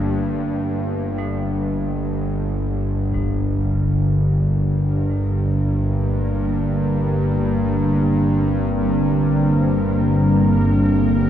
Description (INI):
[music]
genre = dark ambient drone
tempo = free time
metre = none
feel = none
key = G minor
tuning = A4 = 436 Hz
[part]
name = gamelan-type bronze metallophone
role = arpeggios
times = 0.0-5.1 s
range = Bb3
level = -34 LUFS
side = right 2 dB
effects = ping-pong delay
[part]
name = bowed-like drone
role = drone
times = 0.0-11.3 s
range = G1 to G2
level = -19 LUFS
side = equal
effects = built-in reverb
[part]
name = sweeping resonant pad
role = sustained chords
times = 3.1-11.3 s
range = D3 to C4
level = -19 LUFS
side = right 1 dB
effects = chorus
[part]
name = concert bass drum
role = percussion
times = 3.1-3.4 s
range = none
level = -36 LUFS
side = equal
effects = none
[part]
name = bubbling stepped-filter texture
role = texture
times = 3.1-11.3 s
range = Bb4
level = -35 LUFS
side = equal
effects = chorus, built-in reverb
[sound]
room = wet cathedral reverb, RT60 5.0 s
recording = worn, warbling old tape, cassette tape, warbly pitch drift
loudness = -17 LUFS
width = side -10 dB against mid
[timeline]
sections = 0.0-3.1 A section; 3.1-11.3 B section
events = fade-in on synth texture 3.1-11.3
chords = 0.0 Gm